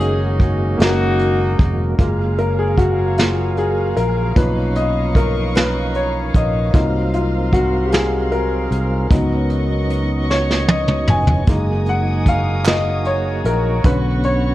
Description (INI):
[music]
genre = slow gospel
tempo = 51 BPM (dotted quarters)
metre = 6/8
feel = straight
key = F# major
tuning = A4 = 440 Hz
[part]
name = clear saxophone section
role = melody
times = 0.0-2.0 s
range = A#3 to G#4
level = -20 LUFS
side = left 1 dB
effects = none
[part]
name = warm grand piano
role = accompaniment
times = 0.0-14.5 s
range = A#2 to G#5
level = -20 LUFS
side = left 2 dB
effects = none
[part]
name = percussive tonewheel organ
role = sustained chords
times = 0.0-14.5 s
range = D3 to E#5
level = -26 LUFS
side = right 3 dB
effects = fast rotary speaker
[part]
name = fingered electric bass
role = bass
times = 0.0-14.5 s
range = E#1 to C#2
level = -20 LUFS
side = equal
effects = none
[part]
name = vintage brush drum kit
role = drums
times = 0.0-14.4 s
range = hi-hat, kick drum, snare drum, toms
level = -17 LUFS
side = equal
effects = none
[part]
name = warm studio string section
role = sustained chords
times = 2.0-14.5 s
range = F#4 to D#6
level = -30 LUFS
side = left 1 dB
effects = none
[part]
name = group handclap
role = percussion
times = 12.7-13.0 s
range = none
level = -24 LUFS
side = right 6 dB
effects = none
[sound]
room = studio ambience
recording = worn, warbling old tape, cassette tape, warbly pitch drift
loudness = -15 LUFS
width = side -15 dB against mid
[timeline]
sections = 0.0-2.0 A section; 2.0-14.5 B section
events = grand piano solo 2.0-14.5; drum fill 10.3-11.5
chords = 0.0 F#69; 2.0 F#maj9; 4.4 Bmaj9#11; 6.7 G#13/B#; 9.1 C#9sus4; 11.5 F#69; 13.8 Bmadd9